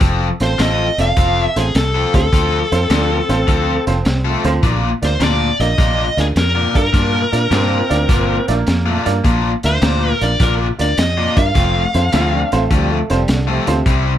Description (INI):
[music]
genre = electric blues shuffle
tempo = 104 BPM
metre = 4/4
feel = swing 68% on 8ths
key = F major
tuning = A4 = 440 Hz
[part]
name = cranked stack guitar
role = riff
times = 0.0-14.1 s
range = Bb2 to A4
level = -20 LUFS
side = left 4 dB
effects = overdrive
[part]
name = fingered electric bass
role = bass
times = 0.0-14.2 s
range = F1 to Bb2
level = -18 LUFS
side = equal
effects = none
[part]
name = crunchy breakbeat drum kit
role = drums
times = 0.0-14.0 s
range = hi-hat, kick drum, snare drum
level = -19 LUFS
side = equal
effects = none
[part]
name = dark smooth lead guitar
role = melody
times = 0.4-13.3 s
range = Ab4 to F5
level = -19 LUFS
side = equal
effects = overdrive, plate reverb
[part]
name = warm upright piano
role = accompaniment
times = 0.4-13.8 s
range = C4 to E5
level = -22 LUFS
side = right 3 dB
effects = none
[part]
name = breathy tenor saxophone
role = second line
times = 2.9-14.1 s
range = C3 to F4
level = -24 LUFS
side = right 4 dB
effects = none
[sound]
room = light reverb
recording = none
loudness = -13 LUFS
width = side -11 dB against mid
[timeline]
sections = 0.0-14.2 A section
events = none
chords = 0.0 F; 4.6 Bb; 11.6 F